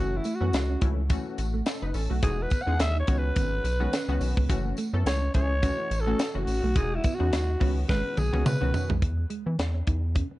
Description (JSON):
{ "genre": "early-eighties boogie funk", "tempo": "106 BPM", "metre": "4/4", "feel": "swing 56% on 16ths", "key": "F# dorian", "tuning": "A4 = 440 Hz", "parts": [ { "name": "breathy alto saxophone", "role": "melody", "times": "0.0-9.0 s", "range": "E4 to F#5", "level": "-32 LUFS", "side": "equal", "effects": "none" }, { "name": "funky polysynth comp", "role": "accompaniment", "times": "0.0-8.9 s", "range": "D#3 to B4", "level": "-34 LUFS", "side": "left 2 dB", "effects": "chorus" }, { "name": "rubbery square bass", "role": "bass", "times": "0.0-10.2 s", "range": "E1 to E3", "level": "-27 LUFS", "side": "equal", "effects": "none" }, { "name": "mellow electric guitar", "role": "riff", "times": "0.1-10.3 s", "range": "G#3 to E4", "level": "-36 LUFS", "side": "right 3 dB", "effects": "wide subtle chorus" }, { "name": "tambourine", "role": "percussion", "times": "0.2-8.9 s", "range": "none", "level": "-47 LUFS", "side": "right 3 dB", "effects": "none" }, { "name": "tight funk drum kit", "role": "drums", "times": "0.3-10.3 s", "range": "hi-hat, kick drum, snare drum, toms", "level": "-28 LUFS", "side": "equal", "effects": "none" } ], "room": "studio reverb", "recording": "dark, warm production, nothing above 10.8 kHz", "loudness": "-24 LUFS", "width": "side -17 dB against mid", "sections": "0.0-9.0 A section; 9.0-10.4 B section", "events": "alto saxophone solo 0.0-9.0; drum fill 7.9-9.0", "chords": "0.0 F#m7; 2.2 Emaj9; 3.1 C#9sus4; 4.5 F#m7; 6.8 Emaj9; 7.6 C#9sus4; 9.0 E", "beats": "0.53 1.10 1.67 | 2.23 2.80 3.36 3.93 | 4.50 5.06 5.63 6.19 | 6.76 7.33 7.89 8.46 | 9.02 9.59 10.16" }